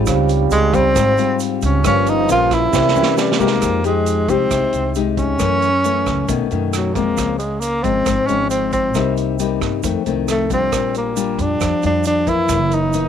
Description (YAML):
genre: bossa nova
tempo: 135 BPM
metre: 4/4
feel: straight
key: F minor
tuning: A4 = 443 Hz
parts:
  - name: growling trombone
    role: second line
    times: 0.0-3.6 s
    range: E3 to G3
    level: -25 LUFS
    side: right 14 dB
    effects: none
  - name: mellow tine electric piano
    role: accompaniment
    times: 0.0-3.6 s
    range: Db4 to F5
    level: -24 LUFS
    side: right 15 dB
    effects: medium stereo tremolo
  - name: nylon-string guitar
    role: accompaniment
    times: 0.0-13.1 s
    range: F2 to G4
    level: -20 LUFS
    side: left 10 dB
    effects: none
  - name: upright bass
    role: bass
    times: 0.0-13.1 s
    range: Gb1 to G2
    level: -22 LUFS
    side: right 2 dB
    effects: none
  - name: vintage drum kit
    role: drums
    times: 0.1-13.0 s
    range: hi-hat, kick drum, rim click, snare drum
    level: -26 LUFS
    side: right 5 dB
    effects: none
  - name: egg shaker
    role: percussion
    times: 0.1-13.1 s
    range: none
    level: -34 LUFS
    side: right 18 dB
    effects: none
  - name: breathy tenor saxophone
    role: melody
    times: 0.5-13.1 s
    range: F#3 to F4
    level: -18 LUFS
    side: right 1 dB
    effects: none
room: light reverb, small room reverb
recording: 1960s-style stereo with parts hard left and right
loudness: -15 LUFS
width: side -8 dB against mid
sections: 0.0-3.6 A section; 3.6-13.1 B section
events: drum fill 2.7-3.6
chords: 0.1 Dbmaj9#11; 1.8 Gm7b5; 2.7 C7b9; 3.6 Fm9; 5.4 Gbm7; 6.3 B9; 7.2 Dbmaj7; 9.0 Cm7; 9.8 F7; 10.7 Bb6; 12.5 Gb13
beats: | 0.07 0.52 0.96 1.40 | 1.85 2.29 2.74 3.18 | 3.62 4.07 4.51 4.96 | 5.40 5.85 6.29 6.74 | 7.18 7.62 8.07 8.51 | 8.95 9.40 9.84 10.29 | 10.73 11.17 11.61 12.06 | 12.50 12.94